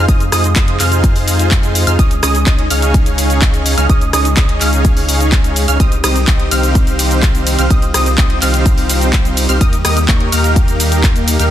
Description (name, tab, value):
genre	EDM, festival progressive house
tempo	126 BPM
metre	4/4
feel	straight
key	unclear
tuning	A4 = 440 Hz
part	lush unison pad	sustained chords	0.0-11.5 s	C3 to Ab4	-23 LUFS	equal	chorus, sidechain pumping
part	wide unison pluck	arpeggios	0.0-11.5 s	Db6 to F6	-20 LUFS	right 1 dB	phaser, sidechain pumping, ping-pong delay
part	dense compressed supersaw	riff	0.0-11.5 s	Bb3 to F5	-18 LUFS	right 1 dB	sidechain pumping, ping-pong delay
part	saturated sub bass	bass	0.0-11.5 s	C2 to F2	-16 LUFS	equal	sidechain pumping
part	electronic kick drum	drums	0.1-11.1 s	none	-12 LUFS	equal	none
part	house drum kit	drums	0.1-11.5 s	handclaps, hi-hat, ride cymbal, rim click, shaker	-18 LUFS	left 1 dB	none
room	digital ambience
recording	dense, heavily limited modern master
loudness	-10 LUFS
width	side -11 dB against mid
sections	0.0-11.5 A section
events	none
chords	0.0 Fm7; 2.0 Dbsus2; 5.8 Cm; 9.6 Eb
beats	| 0.09 0.56 1.04 1.51 | 1.99 2.47 2.94 3.42 | 3.90 4.37 4.85 5.32 | 5.80 6.28 6.75 7.23 | 7.71 8.18 8.66 9.13 | 9.61 10.09 10.56 11.04